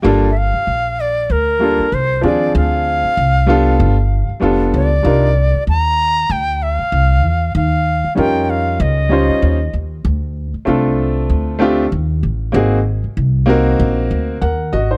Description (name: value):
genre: hip hop, jazz-hop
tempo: 96 BPM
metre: 4/4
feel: swing 58% on 16ths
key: G minor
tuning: A4 = 440 Hz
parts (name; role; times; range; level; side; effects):
- clear upright piano; accompaniment; 0.0-15.0 s; F3 to Gb5; -18 LUFS; equal; plate reverb
- upright bass; bass; 0.0-15.0 s; F1 to F2; -19 LUFS; equal; none
- bright reedy bansuri; melody; 0.3-9.7 s; Bb4 to Bb5; -20 LUFS; equal; none
room: light reverb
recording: none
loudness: -16 LUFS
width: mono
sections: 0.0-15.0 A section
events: none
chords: 0.0 Gm7; 2.5 Dm7b5; 3.8 G7; 5.0 Cm11; 7.5 Eb9; 10.0 Dm7; 12.5 Ab9